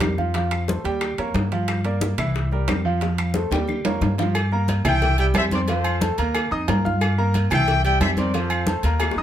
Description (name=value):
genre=latin, salsa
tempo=180 BPM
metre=4/4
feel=straight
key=F major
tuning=A4 = 439 Hz
part: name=clear concert grand piano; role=accompaniment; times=0.0-9.2 s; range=E3 to F6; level=-25 LUFS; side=right 2 dB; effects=none
part: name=upright bass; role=bass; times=0.0-9.2 s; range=C2 to G2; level=-23 LUFS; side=equal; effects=none
part: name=bongos and cowbell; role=percussion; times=0.0-9.2 s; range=none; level=-31 LUFS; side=left 5 dB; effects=none
part: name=claves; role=percussion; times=0.0-9.2 s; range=none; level=-33 LUFS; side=left 3 dB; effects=none
part: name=congas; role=percussion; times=0.0-9.2 s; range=none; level=-28 LUFS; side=left 2 dB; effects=none
part: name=timbales and agogo bells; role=percussion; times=0.0-9.2 s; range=none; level=-29 LUFS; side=right 5 dB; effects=none
part: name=mellow trumpet section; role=melody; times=4.9-8.8 s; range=A4 to G5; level=-24 LUFS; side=left 2 dB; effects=none
room=light reverb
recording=none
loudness=-19 LUFS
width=side -11 dB against mid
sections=0.0-4.3 A section; 4.3-9.2 B section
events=drum fill 3.0-4.3, 9.0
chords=0.3 F; 1.0 Eb7; 1.7 Gm7; 2.4 C7; 3.0 F; 3.7 Eb7; 4.3 Gm; 5.0 C; 5.7 F; 6.3 Eb; 7.0 C7; 8.3 F